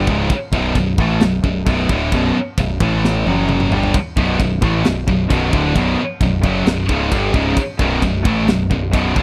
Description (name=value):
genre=heavy metal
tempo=132 BPM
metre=4/4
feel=straight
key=B minor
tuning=A4 = 440 Hz
part: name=crunchy overdriven guitar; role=riff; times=0.0-9.2 s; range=B1 to A3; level=-23 LUFS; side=equal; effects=none
part: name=heavy high-gain guitar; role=riff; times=0.0-9.2 s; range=B1 to A3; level=-24 LUFS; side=equal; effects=distortion
part: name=growling picked electric bass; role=bass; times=0.0-9.2 s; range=B0 to A1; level=-24 LUFS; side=equal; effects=overdrive
part: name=tight metal drum kit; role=drums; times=0.1-9.2 s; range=crash cymbal, kick drum, snare drum, toms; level=-22 LUFS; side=equal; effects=none
part: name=heavy high-gain guitar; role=riff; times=4.0-9.2 s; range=B1 to A3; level=-26 LUFS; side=equal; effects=distortion
room=studio ambience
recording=none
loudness=-17 LUFS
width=mono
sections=0.0-9.2 A section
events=drum fill 3.0-3.9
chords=0.0 Bm; 2.8 A5; 3.3 F#5; 3.7 Bm